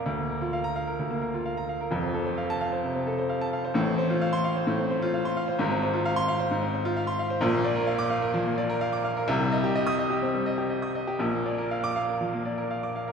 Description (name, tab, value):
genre	classical, virtuoso piano study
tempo	130 BPM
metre	4/4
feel	rubato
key	unclear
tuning	A4 = 439 Hz
part	clear baby grand piano	solo	0.0-13.1 s	F1 to Eb6	-25 LUFS	equal	none
room	wet concert hall reverb, RT60 2.4 s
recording	heard from further back in the room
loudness	-25 LUFS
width	side -6 dB against mid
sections	0.0-13.1 A section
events	none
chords	0.1 Bb/D; 1.9 F; 3.8 F/A; 5.6 Fm/Ab; 7.4 Bb; 9.3 Cm; 11.2 Bb